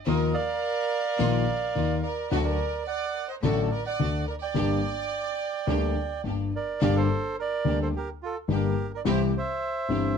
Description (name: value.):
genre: tango.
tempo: 107 BPM.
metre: 4/4.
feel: rubato.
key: G minor.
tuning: A4 = 445 Hz.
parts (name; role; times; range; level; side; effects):
bandoneon; melody; 0.1-10.2 s; F4 to G5; -30 LUFS; right 6 dB; none.
warm chamber violin section; second line; 0.1-6.2 s; A4 to D5; -34 LUFS; right 1 dB; tape echo.
dark concert grand piano; accompaniment; 0.1-10.1 s; G1 to G4; -25 LUFS; left 3 dB; none.
clear symphonic string section; stabs; 0.1-10.1 s; A3 to G4; -35 LUFS; right 2 dB; none.
room: light reverb.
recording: dark, warm production.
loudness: -24 LUFS.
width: side -6 dB against mid.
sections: 0.0-6.8 A section; 6.8-10.2 A section.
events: none.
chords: 0.1 Ebsus2; 2.3 D; 4.6 Gm; 9.1 C.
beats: | 0.06 0.63 1.19 1.75 | 2.31 2.87 3.43 4.00 | 4.56 5.12 5.68 6.25 | 6.82 7.39 7.95 8.51 | 9.07 9.63.